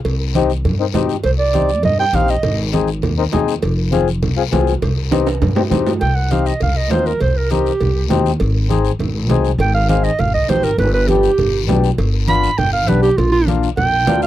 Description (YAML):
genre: latin, cumbia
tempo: 201 BPM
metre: 4/4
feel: straight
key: C minor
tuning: A4 = 440 Hz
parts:
  - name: cowbell and timbales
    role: percussion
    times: 0.0-14.2 s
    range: none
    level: -24 LUFS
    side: right 5 dB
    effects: none
  - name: upright bass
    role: bass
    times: 0.1-14.3 s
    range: F1 to G2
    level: -18 LUFS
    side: equal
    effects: none
  - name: congas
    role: percussion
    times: 0.1-14.2 s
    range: none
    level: -23 LUFS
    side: right 2 dB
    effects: none
  - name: guiro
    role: percussion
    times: 0.1-14.3 s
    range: none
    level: -32 LUFS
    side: left 20 dB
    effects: none
  - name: mellow accordion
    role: accompaniment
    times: 0.4-14.3 s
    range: Bb3 to Bb4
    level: -18 LUFS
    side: left 8 dB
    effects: none
  - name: warm clarinet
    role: melody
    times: 1.2-2.6, 6.0-14.3 s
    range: F4 to B5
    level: -17 LUFS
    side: right 4 dB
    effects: none
room: little or no reverb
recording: dry, close 1970s-style studio recording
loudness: -14 LUFS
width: side -13 dB against mid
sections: 0.0-6.0 A section; 6.0-14.3 B section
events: drum fill 5.1-6.0; clarinet solo 6.0-14.3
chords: 0.1 Cm; 2.4 Ab; 3.6 Fm; 4.8 Cm; 8.4 Ab; 10.8 G7; 13.2 Bb